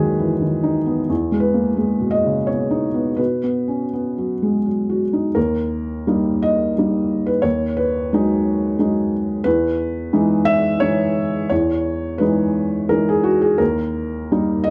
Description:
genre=neoclassical minimalist piano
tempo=81-91 BPM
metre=3/4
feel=rubato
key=unclear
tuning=A4 = 440 Hz
part: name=felt-muted upright piano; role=solo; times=0.0-14.7 s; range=D#2 to E5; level=-19 LUFS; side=equal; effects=none
room=light reverb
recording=dark, warm production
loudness=-19 LUFS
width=mono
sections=0.0-5.4 A section; 5.4-14.7 B section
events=none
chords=0.0 B6/D#; 1.1 Emaj7; 3.2 B5; 5.4 D#; 7.4 B6/D#; 9.5 Emaj7; 13.6 D#

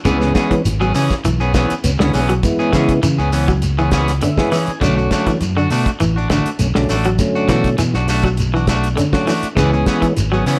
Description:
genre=afrobeat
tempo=101 BPM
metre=4/4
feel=straight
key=unclear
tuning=A4 = 440 Hz
part: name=tonewheel organ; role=accompaniment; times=0.0-10.1 s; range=D3 to G#5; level=-22 LUFS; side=equal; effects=slow rotary speaker, plate reverb
part: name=electric guitar at the edge of break-up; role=stabs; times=0.0-10.6 s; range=E3 to G#4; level=-23 LUFS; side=equal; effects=plate reverb
part: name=electric guitar at the edge of break-up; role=arpeggios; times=0.1-10.5 s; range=C#3 to F#3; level=-24 LUFS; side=equal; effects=plate reverb
part: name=fingered electric bass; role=bass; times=0.1-10.6 s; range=G#1 to C#3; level=-21 LUFS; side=equal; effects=none
part: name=cloth-damped thuddy drum kit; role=drums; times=0.1-10.6 s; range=hi-hat, kick drum, snare drum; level=-24 LUFS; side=equal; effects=none
part: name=shekere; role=percussion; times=0.1-10.6 s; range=none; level=-28 LUFS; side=equal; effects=none
room=moderate large studio reverb, RT60 0.8 s, small room ambience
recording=none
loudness=-16 LUFS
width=mono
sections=0.0-10.6 A section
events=tonewheel organ fill 3.9-4.8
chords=0.1 C#m7; 4.8 Bm7; 9.6 C#m7

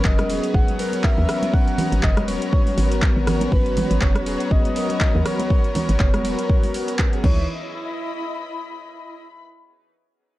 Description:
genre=deep house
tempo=121 BPM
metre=4/4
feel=swing 56% on 16ths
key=unclear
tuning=A4 = 445 Hz
part: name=breathy flute-like synth lead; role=melody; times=0.0-7.5 s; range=B4 to F#5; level=-29 LUFS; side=equal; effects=chorus, cassette tape, tape echo
part: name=soft string machine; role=sustained chords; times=0.0-7.5 s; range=B3 to A#5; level=-35 LUFS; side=equal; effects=none
part: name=chorused polysynth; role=stabs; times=0.0-7.4 s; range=E3 to B4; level=-26 LUFS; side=left 1 dB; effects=sidechain pumping, tape echo
part: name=hollow knocking FM bass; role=bass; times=0.0-7.5 s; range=D#1 to D#2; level=-22 LUFS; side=equal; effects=sidechain pumping
part: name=deep house drum kit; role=drums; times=0.0-7.3 s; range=crash cymbal, handclaps, hi-hat, ride cymbal, rim click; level=-29 LUFS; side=equal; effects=small room ambience
part: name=electronic kick drum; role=drums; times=0.0-7.3 s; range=none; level=-19 LUFS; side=equal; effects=small room ambience
part: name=rich studio string section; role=texture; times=0.0-9.4 s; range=B3 to D#6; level=-31 LUFS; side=left 2 dB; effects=sidechain pumping
part: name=congas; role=percussion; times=0.2-7.5 s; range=none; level=-28 LUFS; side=right 2 dB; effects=sidechain pumping on perc
room=light reverb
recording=dark, warm production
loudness=-18 LUFS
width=side -16 dB against mid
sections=0.0-7.5 A section; 7.5-9.5 B section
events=drop 0.0-7.5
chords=0.0 G#m11; 7.2 C#m9; 7.5 Badd11/E

